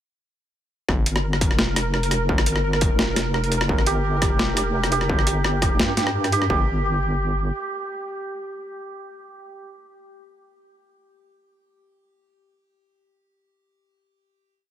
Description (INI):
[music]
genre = half-time drum and bass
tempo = 171 BPM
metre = 4/4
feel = swing 53% on 16ths, half-time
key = G minor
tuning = A4 = 440 Hz
[part]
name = deep soft wobble bass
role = bass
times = 0.9-7.5 s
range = F1 to G2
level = -24 LUFS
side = left 1 dB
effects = chorus
[part]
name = boom bap sampler-style drum kit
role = drums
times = 0.9-6.5 s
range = hi-hat, rim click, snare drum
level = -24 LUFS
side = equal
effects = overdrive
[part]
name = electronic kick drum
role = drums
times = 0.9-6.6 s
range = none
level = -23 LUFS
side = left 1 dB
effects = distortion
[part]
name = pulsing gated texture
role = texture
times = 0.9-6.5 s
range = Bb4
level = -29 LUFS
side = right 1 dB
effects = chorus, built-in reverb
[part]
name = santur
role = arpeggios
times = 3.9-9.6 s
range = G4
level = -26 LUFS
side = right 4 dB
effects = vintage 12-bit sampler grit, ping-pong delay
[sound]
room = little or no reverb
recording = none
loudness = -19 LUFS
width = side -11 dB against mid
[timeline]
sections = 0.9-6.5 drop; 6.5-9.3 final note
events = drop 0.9-6.5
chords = 0.9 Gm; 6.5 N.C.